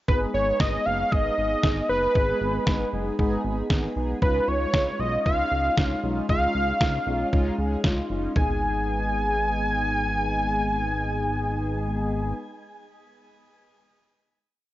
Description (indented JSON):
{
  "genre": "synth-pop",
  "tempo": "116 BPM",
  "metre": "4/4",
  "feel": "straight",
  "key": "G# dorian",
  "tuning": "A4 = 440 Hz",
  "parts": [
    { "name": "wide unison lead", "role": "melody", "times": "0.1-12.3 s", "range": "B4 to G#5", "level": "-26 LUFS", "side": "equal", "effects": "analog delay, shimmer reverb" },
    { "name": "mellow synth brass", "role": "accompaniment", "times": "0.1-12.3 s", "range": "G#3 to G#4", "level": "-28 LUFS", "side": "left 1 dB", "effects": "chorus, shimmer reverb" },
    { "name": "chorused synth bass", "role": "bass", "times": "0.1-12.3 s", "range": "F#1 to C#2", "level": "-29 LUFS", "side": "equal", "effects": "none" },
    { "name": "detuned 8-bit digital drum machine", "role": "drums", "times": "0.1-8.5 s", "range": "kick drum, snare drum, toms", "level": "-24 LUFS", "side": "equal", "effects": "none" }
  ],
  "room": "light reverb",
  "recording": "worn, warbling old tape, cassette tape, warbly pitch drift, nothing above 7.6 kHz",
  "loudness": "-22 LUFS",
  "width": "side -15 dB against mid",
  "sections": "0.1-8.4 verse; 8.4-12.5 final chord",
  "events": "none",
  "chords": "0.1 G#m; 4.2 C#add9; 8.4 G#m"
}